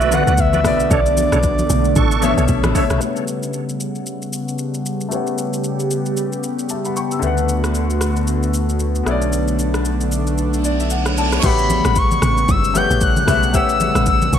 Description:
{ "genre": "amapiano", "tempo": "114 BPM", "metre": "4/4", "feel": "swing 58% on 16ths", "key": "unclear", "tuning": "A4 = 440 Hz", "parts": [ { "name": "breathy flute-like synth lead", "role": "melody", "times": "0.0-2.5, 11.4-14.4 s", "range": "D5 to G6", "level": "-19 LUFS", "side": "left 1 dB", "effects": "chorus, ping-pong delay" }, { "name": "clear grand piano", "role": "accompaniment", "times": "0.0-14.4 s", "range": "B2 to E6", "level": "-23 LUFS", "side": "left 5 dB", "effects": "lush chorus, low-pass filter" }, { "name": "warm analog pad", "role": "sustained chords", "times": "0.0-14.4 s", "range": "C#3 to F#5", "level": "-22 LUFS", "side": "equal", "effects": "chorus, sidechain pumping, low-pass filter" }, { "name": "bright tonewheel organ", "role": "stabs", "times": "0.0-2.8 s", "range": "D4 to C#6", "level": "-24 LUFS", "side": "right 8 dB", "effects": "chorus vibrato, ping-pong delay" }, { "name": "deep log drum bass", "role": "bass", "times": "0.0-3.0, 11.4-14.4 s", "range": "G1 to D2", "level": "-19 LUFS", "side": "equal", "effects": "none" }, { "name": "deep house drum kit", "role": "drums", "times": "0.0-14.4 s", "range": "crash cymbal, hi-hat, kick drum, rim click, shaker", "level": "-22 LUFS", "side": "equal", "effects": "gated reverb" }, { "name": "congas", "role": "percussion", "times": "0.1-2.9, 11.7-14.4 s", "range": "none", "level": "-26 LUFS", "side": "right 1 dB", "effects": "none" }, { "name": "saturated sub bass", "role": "bass", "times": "7.2-11.4 s", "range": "B1 to D2", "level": "-20 LUFS", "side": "equal", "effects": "none" }, { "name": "reverse cymbal", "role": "sound effects", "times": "10.6-11.4 s", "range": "none", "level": "-27 LUFS", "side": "right 5 dB", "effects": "none" } ], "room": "moderate plate reverb, RT60 2.6 s", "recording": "bright 1980s-style digital production", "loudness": "-15 LUFS", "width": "side -9 dB against mid", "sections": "0.0-3.0 A section; 3.0-11.4 B section; 11.4-14.4 A section", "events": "drop 0.0-3.0, 11.4-14.4; filter sweep 3.0-11.4; grand piano fill 10.4-11.4; reverse cymbal 10.6-11.4", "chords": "0.0 D6; 0.6 Bm9; 3.0 A13; 7.2 D6; 9.1 Bm9; 11.4 A13" }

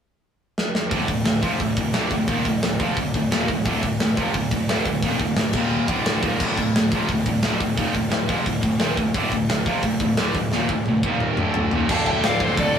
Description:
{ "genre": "heavy metal", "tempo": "175 BPM", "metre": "4/4", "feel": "straight", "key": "D minor", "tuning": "A4 = 440 Hz", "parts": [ { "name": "tight metal drum kit", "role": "drums", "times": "0.6-12.7 s", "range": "crash cymbal, hi-hat, kick drum, snare drum, toms", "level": "-24 LUFS", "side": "equal", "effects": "none" }, { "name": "high-gain distorted guitar", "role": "riff", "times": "0.9-12.8 s", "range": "D2 to F3", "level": "-22 LUFS", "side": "equal", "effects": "distortion" }, { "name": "fuzz picked electric bass", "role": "bass", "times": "0.9-12.8 s", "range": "D1 to F1", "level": "-30 LUFS", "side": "left 1 dB", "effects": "overdrive" }, { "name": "high-gain lead guitar", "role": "melody", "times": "11.9-12.8 s", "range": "C5 to A5", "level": "-23 LUFS", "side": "left 2 dB", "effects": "distortion" }, { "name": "high-gain lead guitar", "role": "second line", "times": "11.9-12.8 s", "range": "A4 to F5", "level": "-28 LUFS", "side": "right 4 dB", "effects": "distortion" }, { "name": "bright chamber string section", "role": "sustained chords", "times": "11.9-12.8 s", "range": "F3 to A4", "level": "-33 LUFS", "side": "left 2 dB", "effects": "none" }, { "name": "thick fuzz guitar", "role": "riff", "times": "11.9-12.8 s", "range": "D2 to F4", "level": "-31 LUFS", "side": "equal", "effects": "none" } ], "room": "moderate small room reverb, RT60 0.5 s", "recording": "rough rehearsal-room recording", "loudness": "-19 LUFS", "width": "side -8 dB against mid", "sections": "0.9-11.9 A section", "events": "drum fill 0.6-0.9, 10.5-11.9", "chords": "0.0 N.C.; 0.9 Dm; 5.5 Eb5; 5.9 Dm; 11.0 Eb5; 11.4 D5; 11.9 Dm" }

